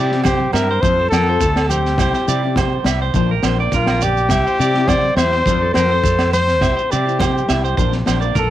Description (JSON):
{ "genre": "highlife guitar band", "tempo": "104 BPM", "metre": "4/4", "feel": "straight", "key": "C mixolydian", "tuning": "A4 = 440 Hz", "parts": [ { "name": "dark trumpet", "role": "melody", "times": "0.0-8.5 s", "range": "F4 to D5", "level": "-19 LUFS", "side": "left 2 dB", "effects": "tape echo" }, { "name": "picked steel-string acoustic guitar", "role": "accompaniment", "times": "0.0-8.4 s", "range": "F3 to Bb4", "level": "-25 LUFS", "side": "left 10 dB", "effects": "cassette tape" }, { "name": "clean electric guitar", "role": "arpeggios", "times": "0.0-8.5 s", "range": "A4 to E5", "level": "-23 LUFS", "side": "right 8 dB", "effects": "spring reverb, cassette tape" }, { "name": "mellow fretless electric bass", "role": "bass", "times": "0.0-8.5 s", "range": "Bb1 to C3", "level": "-20 LUFS", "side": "equal", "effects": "none" }, { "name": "crunchy breakbeat drum kit", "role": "drums", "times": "0.1-8.5 s", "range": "kick drum, snare drum", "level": "-22 LUFS", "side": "equal", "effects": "none" }, { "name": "agogo bells", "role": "percussion", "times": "0.2-8.2 s", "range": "none", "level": "-27 LUFS", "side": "right 9 dB", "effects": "none" }, { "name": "congas", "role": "percussion", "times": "0.2-8.5 s", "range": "none", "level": "-28 LUFS", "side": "left 1 dB", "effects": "none" }, { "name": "shekere", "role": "percussion", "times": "0.3-8.5 s", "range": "none", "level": "-26 LUFS", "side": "right 4 dB", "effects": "none" } ], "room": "light reverb", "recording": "home recording on cassette", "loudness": "-14 LUFS", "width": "side -13 dB against mid", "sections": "0.0-8.5 A section", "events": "none", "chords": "0.0 C; 0.8 F; 2.0 C; 3.1 Bb; 4.3 C; 5.5 F; 6.6 C; 7.8 Bb" }